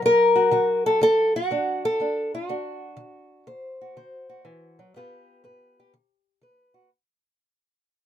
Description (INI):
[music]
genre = acoustic country blues, solo or duo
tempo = 122 BPM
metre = 4/4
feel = swing 67% on 8ths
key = unclear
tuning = A4 = 440 Hz
[part]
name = fingerpicked old ladder-braced acoustic guitar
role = solo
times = 0.0-6.9 s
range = G2 to C5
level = -20 LUFS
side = left 1 dB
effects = none
[sound]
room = light reverb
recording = none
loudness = -19 LUFS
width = side -10 dB against mid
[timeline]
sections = 0.0-6.9 A section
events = fade-out 0.0-6.9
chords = 0.0 D7; 4.9 G7; 5.9 D